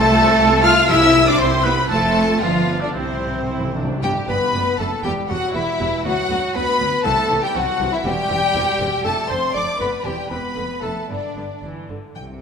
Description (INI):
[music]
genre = quick classical-period movement for symphony orchestra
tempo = 118 BPM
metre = 2/4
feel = rubato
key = C major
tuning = A4 = 440 Hz
[part]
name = dark studio violin section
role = melody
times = 0.0-12.2 s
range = C5 to F6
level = -23 LUFS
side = left 3 dB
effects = none
[part]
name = mellow hollow silver concert flute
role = second line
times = 0.0-11.6 s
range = C5 to F6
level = -24 LUFS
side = equal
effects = none
[part]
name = rich studio violin section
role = second line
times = 0.0-11.6 s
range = C4 to F5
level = -24 LUFS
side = left 1 dB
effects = none
[part]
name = warm oboe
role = second line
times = 0.0-3.7 s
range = C4 to F5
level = -25 LUFS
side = right 2 dB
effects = none
[part]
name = warm studio viola section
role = accompaniment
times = 0.0-12.2 s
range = D3 to A4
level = -28 LUFS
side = right 2 dB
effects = none
[part]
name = mellow French horn section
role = sustained chords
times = 0.0-12.4 s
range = C3 to F4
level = -25 LUFS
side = left 2 dB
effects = none
[part]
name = rich studio double bass section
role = bass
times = 0.0-12.4 s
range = E1 to D2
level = -27 LUFS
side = right 2 dB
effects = none
[part]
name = warm studio cello section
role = bass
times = 0.0-12.4 s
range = C2 to F4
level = -25 LUFS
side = right 1 dB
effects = none
[part]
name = timpani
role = percussion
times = 0.0-4.0, 7.1-7.8, 12.2-12.4 s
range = C3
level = -29 LUFS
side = equal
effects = none
[part]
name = clear clarinet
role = second line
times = 4.0-11.6 s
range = D4 to D5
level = -27 LUFS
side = left 1 dB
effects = none
[sound]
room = wet concert hall reverb, RT60 1.9 s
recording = minimal, uncompressed stereo recording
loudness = -16 LUFS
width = side -6 dB against mid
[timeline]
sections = 0.0-4.0 A section; 4.0-12.2 B section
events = timpani fill 2.9-4.0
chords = 0.0 F/C; 0.9 C; 1.9 F; 2.4 G7; 2.9 C; 4.0 G; 4.5 D/F#; 5.0 Em; 6.1 Bm/D; 7.1 Am6/C; 8.1 C/E; 9.1 Dm/F; 10.1 C/E; 10.6 Dm/F; 11.1 G5